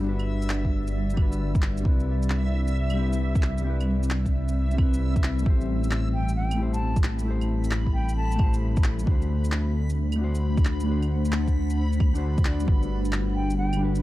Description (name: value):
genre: future garage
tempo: 133 BPM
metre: 4/4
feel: swing 67% on 16ths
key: A dorian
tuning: A4 = 440 Hz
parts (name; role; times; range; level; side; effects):
- mellow electric guitar; accompaniment; 0.0-14.0 s; G3 to D5; -32 LUFS; left 3 dB; sidechain pumping, tape echo
- granular cloud pad; sustained chords; 0.0-14.0 s; G3 to F#5; -32 LUFS; equal; built-in reverb, sidechain pumping
- dark detuned saw bass; bass; 0.0-14.0 s; G1 to D2; -25 LUFS; equal; sidechain pumping
- backwards swelling texture; texture; 0.0-14.0 s; E5 to B5; -41 LUFS; right 1 dB; built-in reverb
- electronic shaker, claves and handclaps; drums; 0.2-14.0 s; none; -34 LUFS; equal; none
- electronic kick drum; drums; 0.6-12.8 s; none; -23 LUFS; equal; none
- silver concert flute; melody; 6.1-8.5, 13.4-13.8 s; G5 to A5; -35 LUFS; equal; tape echo
room: digital ambience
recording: dry, gritty hardware recording, vinyl crackle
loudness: -22 LUFS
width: side -16 dB against mid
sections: 0.0-14.0 A section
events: none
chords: 0.0 Gmaj7; 1.9 Cmaj7; 5.5 Am7; 9.1 D7; 12.7 Gmaj7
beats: | 0.05 0.50 0.95 1.40 | 1.85 2.30 2.75 3.20 | 3.65 4.11 4.56 5.01 | 5.46 5.91 6.36 6.81 | 7.26 7.71 8.17 8.62 | 9.07 9.52 9.97 10.42 | 10.87 11.32 11.78 12.23 | 12.68 13.13 13.58